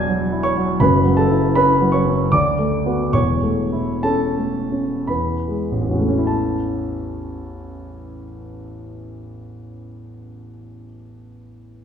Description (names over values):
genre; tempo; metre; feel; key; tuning
classical; 48-85 BPM; 3/4; rubato; A major; A4 = 440 Hz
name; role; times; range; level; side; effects
dark concert grand piano; accompaniment; 0.0-11.8 s; E1 to B6; -18 LUFS; equal; none
room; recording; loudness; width
wet recital hall reverb, RT60 1.5 s; heard from further back in the room; -16 LUFS; side -8 dB against mid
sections
0.0-6.3 A section; 6.3-9.7 B section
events
slowing down 0.0-6.3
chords
0.0 E9; 0.8 F#m7; 2.3 Bm7/D; 3.1 A/E; 5.1 E69; 6.3 A